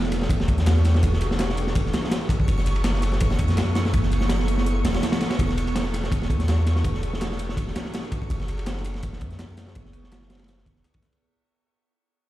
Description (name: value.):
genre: drum and bass, jungle.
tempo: 165 BPM.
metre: 4/4.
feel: swing 53% on 16ths.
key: unclear.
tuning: A4 = 441 Hz.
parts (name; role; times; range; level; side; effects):
ethereal airy pad; sustained chords; 0.0-11.2 s; B3 to A4; -32 LUFS; right 2 dB; ensemble chorus, built-in reverb.
long sustained 808-style bass; bass; 0.0-10.8 s; E1 to F#2; -24 LUFS; equal; none.
breakbeat sampler-style drum kit; drums; 0.0-11.2 s; hi-hat, snare drum; -42 LUFS; left 3 dB; high-pass filter on hats, high-pass filter on snare.
crunchy breakbeat drum kit; drums; 0.0-11.2 s; kick drum, ride cymbal, snare drum; -24 LUFS; equal; none.
twinkling granular texture; texture; 0.2-11.2 s; C#6; -38 LUFS; right 2 dB; built-in reverb.
room: small room ambience.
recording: played on a big sound system in a bare room, large studio reverb.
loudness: -21 LUFS.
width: side -15 dB against mid.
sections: 0.0-11.2 A section.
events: drop 0.0-11.2; fade-out 5.4-11.2.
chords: 0.0 Em11; 2.5 F#m11; 5.4 Em11; 8.3 F#m11.